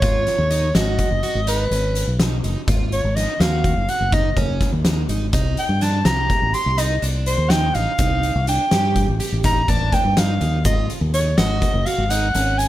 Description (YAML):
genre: progressive instrumental, band music in an uneven meter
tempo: 248 BPM (eighths)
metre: 11/8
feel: straight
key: unclear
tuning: A4 = 440 Hz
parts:
  - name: warm soprano saxophone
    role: melody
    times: 0.0-12.7 s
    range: Cb5 to C6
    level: -22 LUFS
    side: equal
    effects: none
  - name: picked plugged-in twelve-string acoustic guitar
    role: arpeggios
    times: 0.0-12.7 s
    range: Db4 to G4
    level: -28 LUFS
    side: right 4 dB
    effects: none
  - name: fingered electric bass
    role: bass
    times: 0.0-12.7 s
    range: Gb1 to G2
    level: -21 LUFS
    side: equal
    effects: none
  - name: oversized low-tuned drum kit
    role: drums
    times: 0.0-12.7 s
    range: hi-hat, kick drum, snare drum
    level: -22 LUFS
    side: equal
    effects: none
  - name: egg shaker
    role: percussion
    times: 5.3-12.7 s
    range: none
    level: -36 LUFS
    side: left 6 dB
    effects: none
room: little or no reverb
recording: none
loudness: -17 LUFS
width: side -14 dB against mid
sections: 0.0-12.7 A section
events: soprano saxophone solo 0.0-12.7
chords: 0.0 Ab7(no3); 5.3 Cmadd9; 10.7 Ab7(no3)